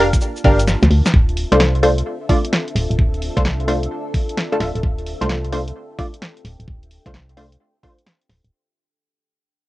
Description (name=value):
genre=UK garage, two-step garage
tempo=130 BPM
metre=4/4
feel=swing 65% on 16ths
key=D minor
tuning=A4 = 439 Hz
part: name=soft string machine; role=sustained chords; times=0.0-8.5 s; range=Bb3 to A5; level=-33 LUFS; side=equal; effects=ensemble chorus, sidechain pumping, cassette tape
part: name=punchy chord stab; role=stabs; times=0.0-8.0 s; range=A3 to F5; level=-19 LUFS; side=equal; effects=chorus, cassette tape, tape echo
part: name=organ-like FM bass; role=bass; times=0.0-8.5 s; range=D1 to D2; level=-18 LUFS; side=equal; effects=none
part: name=electronic kick drum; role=drums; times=0.1-8.0 s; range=none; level=-17 LUFS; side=equal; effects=cassette tape
part: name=punchy analog drum machine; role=drums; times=0.1-8.5 s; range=hi-hat, shaker, snare drum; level=-23 LUFS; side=equal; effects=cassette tape
part: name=deep dark ambient pad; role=texture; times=2.1-8.5 s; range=D4 to G5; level=-34 LUFS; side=left 2 dB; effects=chorus, built-in reverb, sidechain pumping, cassette tape
room=light reverb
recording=home recording on cassette, nothing above 10.7 kHz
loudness=-15 LUFS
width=side -18 dB against mid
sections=0.0-1.1 A section; 1.1-8.5 B section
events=drop 0.0-1.1; drum fill 0.7-1.1; fade-out on ambient pad 1.1-8.5; fade-out 1.1-8.5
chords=0.0 Gm7; 1.1 Dm7